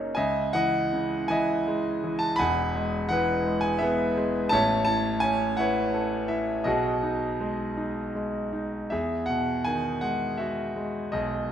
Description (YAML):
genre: classical, lyrical solo piano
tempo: 82 BPM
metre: 3/4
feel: uneven beats, rubato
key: E major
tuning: A4 = 440 Hz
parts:
  - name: bright concert grand piano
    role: solo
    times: 0.0-11.5 s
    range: E1 to B5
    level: -24 LUFS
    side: equal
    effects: none
room: moderate concert hall reverb, RT60 1.7 s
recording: minimal, uncompressed stereo recording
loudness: -24 LUFS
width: side -9 dB against mid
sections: 0.0-8.9 A section; 8.9-11.5 B section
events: none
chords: 0.2 C#madd9; 2.4 Eadd9; 4.5 Aadd9; 6.7 B6; 8.9 Emaj9